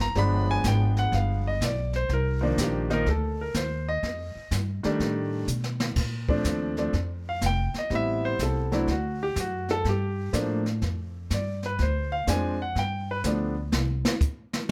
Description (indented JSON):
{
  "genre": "jazz piano trio",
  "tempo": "124 BPM",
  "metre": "4/4",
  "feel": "swing 67% on 8ths",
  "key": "Bb major",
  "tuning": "A4 = 439 Hz",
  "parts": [
    { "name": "warm concert grand piano", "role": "melody", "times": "0.0-13.5 s", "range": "Eb3 to B5", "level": "-30 LUFS", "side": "equal", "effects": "plate reverb" },
    { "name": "upright bass", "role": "bass", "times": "0.0-14.0 s", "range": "F1 to Cb3", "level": "-30 LUFS", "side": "equal", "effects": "none" },
    { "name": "jazz brush drum kit", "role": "drums", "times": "0.0-14.7 s", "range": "brushed snare drum, crash cymbal, hi-hat, kick drum, snare drum, toms", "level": "-32 LUFS", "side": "equal", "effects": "none" }
  ],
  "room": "light reverb",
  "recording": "close, detailed microphones",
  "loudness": "-27 LUFS",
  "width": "mono",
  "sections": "0.0-6.0 A section; 6.0-14.7 B section",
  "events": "drum fill 5.5-6.0; grand piano solo 6.0-14.7",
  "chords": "0.2 G7b9; 2.1 Cm11; 4.0 F13; 6.0 Bbmaj7; 7.9 Am7; 8.9 D; 9.8 G7sus2; 11.8 Dm7b5; 12.8 G7; 13.7 N.C."
}